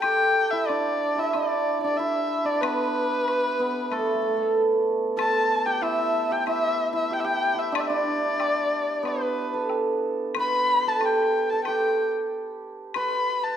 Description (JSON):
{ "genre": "chinese traditional, Chinese chamber ensemble", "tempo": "93 BPM", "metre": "4/4", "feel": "rubato", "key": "D zhi mode", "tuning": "A4 = 440 Hz", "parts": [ { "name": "dark erhu", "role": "melody", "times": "0.0-13.6 s", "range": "A4 to B5", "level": "-24 LUFS", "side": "left 2 dB", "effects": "none" }, { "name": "hammered dulcimer", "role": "second line", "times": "0.0-13.6 s", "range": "A3 to B4", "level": "-25 LUFS", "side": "right 3 dB", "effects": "none" }, { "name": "woodblock", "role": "percussion", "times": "0.0-13.1 s", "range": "none", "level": "-36 LUFS", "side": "left 7 dB", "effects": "none" } ], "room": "wet recital hall reverb, RT60 1.7 s", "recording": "none", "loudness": "-22 LUFS", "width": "side -9 dB against mid", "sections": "0.0-13.6 A section", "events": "none", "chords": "none" }